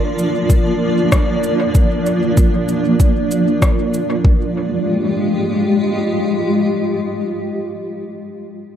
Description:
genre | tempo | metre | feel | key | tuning
ambient dub | 96 BPM | 4/4 | swing 58% on 16ths | F dorian | A4 = 439 Hz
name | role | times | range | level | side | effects
granular cloud pad | sustained chords | 0.0-7.5 s | F3 to Eb5 | -16 LUFS | equal | built-in reverb
bubbling stepped-filter texture | texture | 0.0-4.3 s | Bb4 | -30 LUFS | right 3 dB | chorus, built-in reverb
electronic cabasa and rim click | drums | 0.2-4.1 s | none | -25 LUFS | left 1 dB | overdrive, dub echo
electronic kick drum | drums | 0.5-4.4 s | none | -14 LUFS | equal | overdrive
room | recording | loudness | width
light reverb | echo-heavy mix | -14 LUFS | side -9 dB against mid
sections
0.0-4.2 A section; 4.2-6.7 B section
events
none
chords
0.0 Bb/F; 4.2 Fm9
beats
0.50 1.12 | 1.75 2.37 3.00 3.62 | 4.25 4.87 5.50 6.12

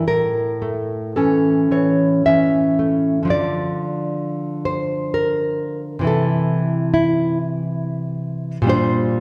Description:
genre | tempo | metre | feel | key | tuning
romantic piece for solo classical guitar | 54-69 BPM | 3/4 | rubato | D minor | A4 = 441 Hz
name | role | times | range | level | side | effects
nylon-string guitar | solo | 0.0-9.2 s | A2 to E5 | -20 LUFS | equal | none
room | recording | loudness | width
wet recital hall reverb, RT60 1.4 s | heard from further back in the room | -20 LUFS | mono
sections
0.0-3.3 A section; 3.3-9.2 A section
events
none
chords
0.1 A; 3.3 Dm; 6.1 Am/C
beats
| 0.07 1.15 2.25 | 3.29 4.21 5.16 | 6.08 6.96 7.84 | 8.72

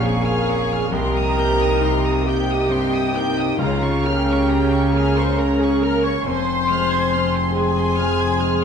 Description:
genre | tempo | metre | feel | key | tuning
cinematic | 45 BPM (dotted quarters) | 6/8 | rubato | Bb dorian | A4 = 440 Hz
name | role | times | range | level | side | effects
warm studio violin section | melody | 0.0-8.6 s | Ab5 to Ab6 | -29 LUFS | left 1 dB | none
mellow cor anglais | second line | 0.0-8.6 s | Db5 to Ab5 | -34 LUFS | right 2 dB | none
mellow hollow silver concert flute | second line | 0.0-8.6 s | F5 to C6 | -29 LUFS | left 1 dB | none
rich studio violin section | second line | 0.0-8.6 s | F5 to Db6 | -28 LUFS | left 1 dB | none
clear concert grand piano | accompaniment | 0.0-8.6 s | Bb1 to Eb4 | -27 LUFS | left 2 dB | none
rich studio viola section | accompaniment | 0.0-8.6 s | F4 to Db5 | -24 LUFS | right 2 dB | none
dark French horn section | sustained chords | 0.0-8.6 s | Bb3 to G4 | -25 LUFS | left 4 dB | none
concert harp | arpeggios | 0.0-8.6 s | Bb2 to Bb5 | -31 LUFS | left 11 dB | none
rich studio double bass section | bass | 0.0-8.6 s | F1 to Db2 | -24 LUFS | right 2 dB | none
warm studio cello section | bass | 0.0-8.6 s | F2 to Db3 | -24 LUFS | right 1 dB | none
room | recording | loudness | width
wet scoring stage reverb, RT60 2.0 s | dark, warm production | -17 LUFS | side -7 dB against mid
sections
0.0-8.6 A section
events
none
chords
0.0 Bbm; 0.9 Cm7; 3.6 Bbm/Db; 6.3 Fm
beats
| 0.93 2.26 | 3.60 4.94 | 6.26 7.55

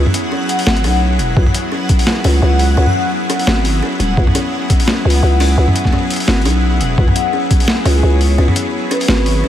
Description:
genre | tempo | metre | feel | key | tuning
half-time drum and bass | 171 BPM | 4/4 | swing 56% on 16ths, half-time | C# minor | A4 = 439 Hz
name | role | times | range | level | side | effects
bowed-like drone | sustained chords | 0.0-9.5 s | F#3 to G#4 | -21 LUFS | equal | built-in reverb, sidechain pumping
growling 808-style bass | bass | 0.0-9.4 s | D#1 to C#2 | -13 LUFS | equal | none
backwards swelling texture | texture | 0.0-9.5 s | C#5 to F#5 | -23 LUFS | left 3 dB | built-in reverb, lush chorus
boom bap sampler-style drum kit | drums | 0.1-9.3 s | hi-hat, snare drum, toms | -19 LUFS | equal | overdrive
buzzing kalimba | arpeggios | 0.3-9.5 s | C#4 | -22 LUFS | equal | analog delay
electronic kick drum | drums | 1.4-2.0, 4.2-7.6 s | none | -14 LUFS | equal | overdrive
breathy flute-like synth lead | melody | 8.0-9.5 s | G#4 to B4 | -23 LUFS | right 5 dB | lush chorus, analog delay
room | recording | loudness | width
light reverb | none | -12 LUFS | side -11 dB against mid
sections
0.0-9.5 A section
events
none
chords
0.0 C#m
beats
0.32 0.67 1.02 | 1.37 1.72 2.07 2.42 | 2.77 3.12 3.47 3.82 | 4.17 4.53 4.88 5.23 | 5.58 5.93 6.28 6.63 | 6.98 7.33 7.68 8.03 | 8.38 8.74 9.09 9.44

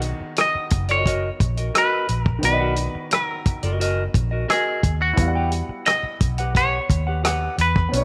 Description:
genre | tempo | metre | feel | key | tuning
lush 1970s-style soul | 87 BPM | 4/4 | straight | B major | A4 = 440 Hz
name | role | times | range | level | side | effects
semi-hollow electric guitar | melody | 0.0-8.0 s | F#4 to D#5 | -25 LUFS | equal | none
warm grand piano | accompaniment | 0.0-8.0 s | D#3 to F#5 | -32 LUFS | equal | none
clean electric guitar | riff | 0.0-8.0 s | F#4 to G5 | -30 LUFS | equal | none
vintage muted fingered electric bass | bass | 0.0-8.0 s | F#1 to E2 | -26 LUFS | equal | none
warm soul drum kit | drums | 0.0-8.0 s | hi-hat, kick drum, rim click | -25 LUFS | equal | none
room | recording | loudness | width
light reverb, small room ambience | none | -21 LUFS | mono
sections
0.0-8.0 A section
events
none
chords
0.0 Bmaj7; 5.2 Emadd9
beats
0.38 1.06 1.75 | 2.43 3.12 3.81 4.49 | 5.18 5.87 6.55 7.24 | 7.92

